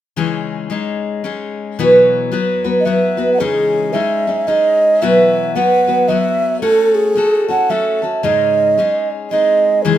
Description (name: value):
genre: acoustic folk duo or small band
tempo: 112 BPM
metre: 3/4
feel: swing 61% on 8ths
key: C# minor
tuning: A4 = 440 Hz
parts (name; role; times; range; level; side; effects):
- picked steel-string acoustic guitar; accompaniment; 0.2-10.0 s; G#2 to B4; -16 LUFS; left 2 dB; none
- breathy mellow round clay ocarina; second line; 2.8-10.0 s; G#4 to F#5; -14 LUFS; right 2 dB; none
room: moderate studio reverb, RT60 0.8 s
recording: minimal, uncompressed stereo recording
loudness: -12 LUFS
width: side -11 dB against mid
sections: 0.2-3.4 A section; 3.4-10.0 B section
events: ocarina solo 3.4-10.0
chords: 0.2 C#madd9; 1.8 Bsus4; 3.4 C#madd9; 5.0 Bsus4; 6.6 F#m/A; 8.2 G#sus4; 9.3 G#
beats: | 0.17 0.71 1.24 | 1.78 2.32 2.86 | 3.40 3.93 4.47 | 5.01 5.55 6.09 | 6.62 7.16 7.70 | 8.24 8.78 9.31 | 9.85